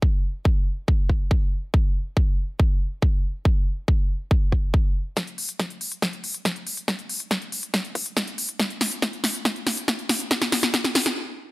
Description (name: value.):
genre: trance.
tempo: 140 BPM.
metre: 4/4.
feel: straight.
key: none.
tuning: none.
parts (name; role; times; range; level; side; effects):
electronic kick drum; drums; 0.0-10.8 s; none; -20 LUFS; equal; overdrive, high-pass filter on kick.
big-room dance drum kit; drums; 5.2-11.1 s; hi-hat, snare drum; -23 LUFS; equal; overdrive, low-pass filter on snare, low-pass filter on hats.
room: digital ambience.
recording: none.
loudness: -22 LUFS.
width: side -20 dB against mid.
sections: 0.0-5.2 A section; 5.2-11.5 B section.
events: build-up 5.2-11.5; drum fill 5.2-11.2; stop 11.2-11.5.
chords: none.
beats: | 0.02 0.45 0.88 1.31 | 1.74 2.17 2.60 3.02 | 3.45 3.88 4.31 4.74 | 5.17 5.59 6.02 6.45 | 6.88 7.31 7.74 8.17 | 8.60 9.02 9.45 9.88 | 10.31 10.74.